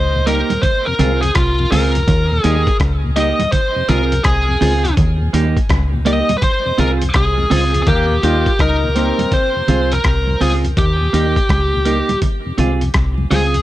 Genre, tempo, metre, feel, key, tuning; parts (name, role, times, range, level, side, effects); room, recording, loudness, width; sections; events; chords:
roots reggae; 83 BPM; 4/4; swing 64% on 16ths; F minor; A4 = 440 Hz
bluesy overdriven lead guitar; melody; 0.0-13.6 s; F4 to Eb5; -18 LUFS; equal; distortion, tape echo
deep dub fingered electric bass; bass; 0.0-13.6 s; C2 to Eb2; -17 LUFS; equal
mellow tonewheel organ; accompaniment; 0.1-13.6 s; Eb2 to F4; -24 LUFS; left 3 dB; overdrive, chorus vibrato, slow rotary speaker
clean electric guitar; accompaniment; 0.3-13.6 s; Bb3 to Ab4; -22 LUFS; right 6 dB; tape echo
lo-fi sampler-style drum kit; drums; 0.3-13.6 s; hi-hat, kick drum, rim click; -19 LUFS; equal
congas; percussion; 0.5-13.5 s; -24 LUFS; right 5 dB
clear trombone; second line; 7.9-9.6 s; Bb3 to F4; -21 LUFS; left 4 dB; tape echo
light reverb; -13 LUFS; side -14 dB against mid
0.0-7.9 A section; 7.9-13.6 B section
lead electric guitar solo 0.0-7.9
0.0 Eb; 0.6 Fm; 2.1 Eb; 3.5 Fm; 5.0 Eb; 6.4 Fm; 7.9 Eb; 9.3 Fm; 10.8 Eb; 12.2 Fm